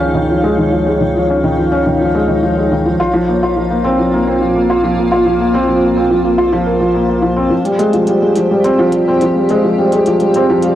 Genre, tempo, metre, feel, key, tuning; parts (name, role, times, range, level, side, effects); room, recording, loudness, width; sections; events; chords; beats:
piano and strings electronica; 106 BPM; 4/4; straight; A4 = 445 Hz
granular cloud pad; sustained chords; 0.0-10.8 s; Bb3 to F5; -18 LUFS; right 1 dB; built-in reverb, cassette tape
felt-muted upright piano; riff; 0.0-10.8 s; Eb3 to Bb4; -12 LUFS; equal; cassette tape, analog delay
warm sub bass; bass; 0.0-7.5 s; Bb1 to Db2; -25 LUFS; equal
electronic hi-hat; drums; 7.7-10.7 s; -34 LUFS; equal; low-pass filter on hats, low-pass filter on room
moderate studio reverb, RT60 0.6 s; home recording on cassette; -11 LUFS; side -12 dB against mid
0.0-7.5 A section; 7.5-10.8 B section
build-up 7.5-10.8
0.0 Dbadd9; 3.0 Bbsus2; 7.5 Fmadd9
0.16 | 0.73 1.29 1.86 2.42 | 2.99 3.56 4.12 4.69 | 5.25 5.82 6.39 6.95 | 7.52 8.08 8.65 9.22 | 9.78 10.35